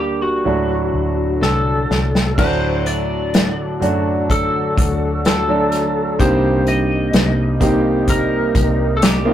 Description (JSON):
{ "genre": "pop ballad", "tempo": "63 BPM", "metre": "4/4", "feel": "straight", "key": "unclear", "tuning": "A4 = 438 Hz", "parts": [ { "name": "lightly driven lead guitar", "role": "melody", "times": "0.0-9.3 s", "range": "F#4 to Eb5", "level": "-22 LUFS", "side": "left 1 dB", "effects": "none" }, { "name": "clear grand piano", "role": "accompaniment", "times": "0.0-9.3 s", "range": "G2 to A4", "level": "-19 LUFS", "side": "right 2 dB", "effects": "none" }, { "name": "sweeping resonant pad", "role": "sustained chords", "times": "0.0-9.3 s", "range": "C3 to A4", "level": "-25 LUFS", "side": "left 1 dB", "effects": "chorus" }, { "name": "vintage muted fingered electric bass", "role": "bass", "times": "0.0-9.3 s", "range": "C2 to F#2", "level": "-22 LUFS", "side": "left 1 dB", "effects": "none" }, { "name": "unplugged drum kit", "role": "drums", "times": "1.4-9.2 s", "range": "crash cymbal, hi-hat, kick drum, snare drum", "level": "-18 LUFS", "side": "equal", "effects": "none" } ], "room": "light reverb", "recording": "rough rehearsal-room recording, tube saturation", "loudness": "-14 LUFS", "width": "side -11 dB against mid", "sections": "0.0-2.4 A section; 2.4-9.3 B section", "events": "drum fill 1.4-2.4", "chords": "0.5 D; 6.2 Cm7" }